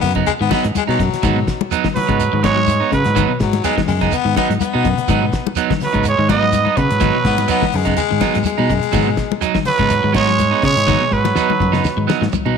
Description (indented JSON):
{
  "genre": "afrobeat",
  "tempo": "124 BPM",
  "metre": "4/4",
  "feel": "swing 54% on 16ths",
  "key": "G# minor",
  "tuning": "A4 = 439 Hz",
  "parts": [
    { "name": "growling trumpet", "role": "melody", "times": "0.0-12.1 s", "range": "B4 to D#5", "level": "-18 LUFS", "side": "right 4 dB", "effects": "none" },
    { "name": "breathy baritone saxophone", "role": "second line", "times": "0.0-9.4 s", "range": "F#3 to B3", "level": "-21 LUFS", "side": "left 11 dB", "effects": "none" },
    { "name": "trombone with metal mute", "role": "second line", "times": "0.0-12.1 s", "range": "F#3 to B3", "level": "-25 LUFS", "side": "right 11 dB", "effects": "slapback echo" },
    { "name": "electric guitar at the edge of break-up", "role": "arpeggios", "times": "0.0-12.4 s", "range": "G#2 to F#3", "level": "-25 LUFS", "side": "left 12 dB", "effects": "none" },
    { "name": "fingered electric bass", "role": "bass", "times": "0.0-12.5 s", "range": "F#2 to C#3", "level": "-19 LUFS", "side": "equal", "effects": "none" },
    { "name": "damped 70s drum kit", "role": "drums", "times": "0.0-12.4 s", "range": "hi-hat, kick drum, snare drum, toms", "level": "-24 LUFS", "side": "left 1 dB", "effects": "none" },
    { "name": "congas", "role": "percussion", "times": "0.0-12.6 s", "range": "none", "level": "-24 LUFS", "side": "left 12 dB", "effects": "none" },
    { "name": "shekere", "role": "percussion", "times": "0.0-12.5 s", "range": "none", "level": "-28 LUFS", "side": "right 4 dB", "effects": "none" },
    { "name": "electric guitar at the edge of break-up", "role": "stabs", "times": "0.2-12.6 s", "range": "F#3 to D#4", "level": "-21 LUFS", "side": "right 11 dB", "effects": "none" }
  ],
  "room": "light reverb, small room ambience",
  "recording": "1960s-style stereo with parts hard left and right",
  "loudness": "-14 LUFS",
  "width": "side -6 dB against mid",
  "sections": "0.0-12.6 A section",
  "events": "drum fill 10.9-12.6",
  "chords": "0.0 G#m7",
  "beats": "0.27 0.75 | 1.23 1.71 2.19 2.68 | 3.16 3.64 4.12 4.61 | 5.09 5.57 6.05 6.54 | 7.02 7.50 7.98 8.46 | 8.95 9.43 9.91 10.39 | 10.88 11.36 11.84 12.32"
}